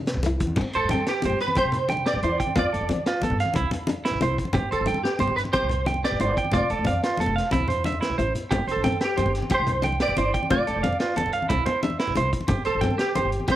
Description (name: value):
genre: highlife guitar band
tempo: 121 BPM (dotted quarters)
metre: 12/8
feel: straight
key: G mixolydian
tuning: A4 = 442 Hz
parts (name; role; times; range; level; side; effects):
- picked steel-string acoustic guitar; accompaniment; 0.0-13.6 s; B3 to E4; -31 LUFS; left 3 dB; none
- upright bass; bass; 0.0-13.4 s; F1 to G3; -29 LUFS; equal; none
- vintage drum kit; drums; 0.1-13.6 s; crash cymbal, hi-hat, kick drum, snare drum; -30 LUFS; equal; none
- congas; percussion; 0.1-13.6 s; none; -29 LUFS; left 2 dB; none
- clean electric guitar; arpeggios; 0.6-13.6 s; E4 to G5; -26 LUFS; right 4 dB; none
- semi-hollow electric guitar; melody; 0.8-13.6 s; G4 to D5; -26 LUFS; equal; ensemble chorus, analog delay
room: light reverb, studio reverb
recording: vinyl crackle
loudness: -21 LUFS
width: side -13 dB against mid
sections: 0.6-13.6 A section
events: drum fill 8.0-8.5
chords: 0.0 Cadd9; 0.6 Gsus4; 2.6 F6; 3.6 Cadd9; 4.6 Gsus4; 6.5 F6; 7.5 Cadd9; 8.5 Gsus4; 10.5 F6; 11.5 Cadd9; 12.5 Gsus4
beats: 0.08 | 0.58 1.07 1.57 2.07 | 2.56 3.06 3.56 4.05 | 4.55 5.05 5.54 6.04 | 6.54 7.03 7.53 8.03 | 8.52 9.02 9.51 10.01 | 10.51 11.00 11.50 11.99 | 12.49 12.98 13.48